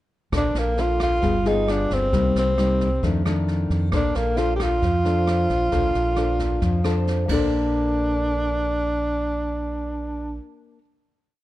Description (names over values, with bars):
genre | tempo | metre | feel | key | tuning
bossa nova | 134 BPM | 4/4 | straight | Bb major | A4 = 441 Hz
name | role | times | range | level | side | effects
nylon-string guitar | accompaniment | 0.3-10.8 s | F2 to C5 | -26 LUFS | left 3 dB | none
deep dub fingered electric bass | bass | 0.3-10.4 s | G1 to F2 | -25 LUFS | right 1 dB | none
jazz brush drum kit | drums | 0.3-7.4 s | crash cymbal, kick drum, rim click, snare drum | -30 LUFS | left 1 dB | none
breathy tenor saxophone | melody | 0.4-10.4 s | Bb3 to G4 | -23 LUFS | right 1 dB | none
room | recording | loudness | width
light reverb | dark, warm production | -20 LUFS | side -15 dB against mid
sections
0.3-7.5 A section; 7.5-11.1 final hit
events
none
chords
0.3 Bbmaj9; 1.2 G7b9; 2.1 Cm7; 3.0 F6; 3.9 Bbmaj9